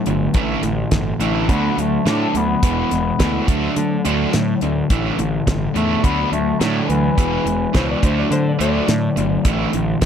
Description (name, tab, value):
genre	classic rock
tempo	106 BPM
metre	4/4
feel	straight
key	unclear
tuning	A4 = 440 Hz
part	overdriven semi-hollow guitar	riff	0.0-10.1 s	E2 to D4	-22 LUFS	right 12 dB	harmonic tremolo
part	sludgy distorted guitar	riff	0.0-10.1 s	A2 to B3	-22 LUFS	left 12 dB	overdrive
part	fuzz picked electric bass	bass	0.1-10.1 s	E1 to D3	-22 LUFS	right 1 dB	overdrive
part	damped 70s drum kit	drums	0.1-10.1 s	hi-hat, kick drum, snare drum	-18 LUFS	equal	none
part	warm bass clarinet	melody	1.2-8.0 s	E3 to D4	-22 LUFS	left 1 dB	slapback echo
part	clean lap steel guitar	second line	7.8-9.7 s	C5 to D5	-26 LUFS	left 4 dB	none
room	small room ambience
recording	dry, close 1970s-style studio recording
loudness	-16 LUFS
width	side -8 dB against mid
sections	0.0-10.1 A section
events	none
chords	0.4 Asus4; 1.5 D; 2.6 E; 3.5 D; 4.9 Asus4; 6.0 D; 7.2 E; 8.0 D; 9.5 Asus4